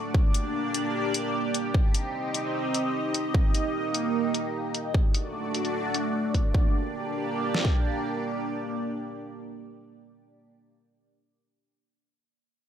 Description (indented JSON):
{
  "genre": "heavy wobble dubstep",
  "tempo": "150 BPM",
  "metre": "4/4",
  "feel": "half-time",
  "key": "G harmonic minor",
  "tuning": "A4 = 440 Hz",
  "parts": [
    { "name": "lush unison pad", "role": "sustained chords", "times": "0.0-10.5 s", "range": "A3 to Eb5", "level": "-28 LUFS", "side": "right 1 dB", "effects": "chorus, phaser, sidechain pumping" },
    { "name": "dubstep drum kit", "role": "drums", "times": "0.1-7.7 s", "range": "kick drum, snare drum", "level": "-23 LUFS", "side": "equal", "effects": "none" },
    { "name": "electronic hi-hat", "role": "drums", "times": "0.3-6.4 s", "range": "none", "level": "-30 LUFS", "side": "left 3 dB", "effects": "low-pass filter on hats" }
  ],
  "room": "light reverb",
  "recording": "none",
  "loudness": "-25 LUFS",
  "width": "side -9 dB against mid",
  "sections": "0.0-6.5 A section; 6.5-9.7 B section",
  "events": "none",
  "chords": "0.1 Gm; 1.7 Cm; 3.3 Eb; 4.9 D; 6.5 Gm"
}